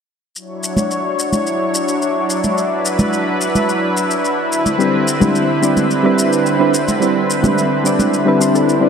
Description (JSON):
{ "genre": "sunset chillout", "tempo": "108 BPM", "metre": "4/4", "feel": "straight", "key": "D major", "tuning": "A4 = 439 Hz", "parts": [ { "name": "lush unison pad", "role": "sustained chords", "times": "0.4-8.9 s", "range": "D3 to C#5", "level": "-17 LUFS", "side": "equal", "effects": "chorus, shimmer reverb" }, { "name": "shaker", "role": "drums", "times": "0.4-8.8 s", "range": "none", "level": "-24 LUFS", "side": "left 2 dB", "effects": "studio ambience" }, { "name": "congas", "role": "percussion", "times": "0.8-8.1 s", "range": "none", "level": "-19 LUFS", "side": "right 1 dB", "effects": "none" }, { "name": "soft electric-piano-like synth keys", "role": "accompaniment", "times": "4.8-8.9 s", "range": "G3 to D5", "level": "-15 LUFS", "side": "moving between left 6 dB and right 7 dB", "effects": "chorus, auto-pan, ping-pong delay, shimmer reverb" }, { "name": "swell", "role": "sound effects", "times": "8.4-8.9 s", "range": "none", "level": "-21 LUFS", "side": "left 1 dB", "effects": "none" } ], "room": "wet plate reverb, RT60 2.0 s", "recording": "bright 1980s-style digital production", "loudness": "-13 LUFS", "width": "side -6 dB against mid", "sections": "0.4-8.9 A section", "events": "swell 8.4-8.9", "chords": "0.4 Dmaj9; 4.5 Cmaj9" }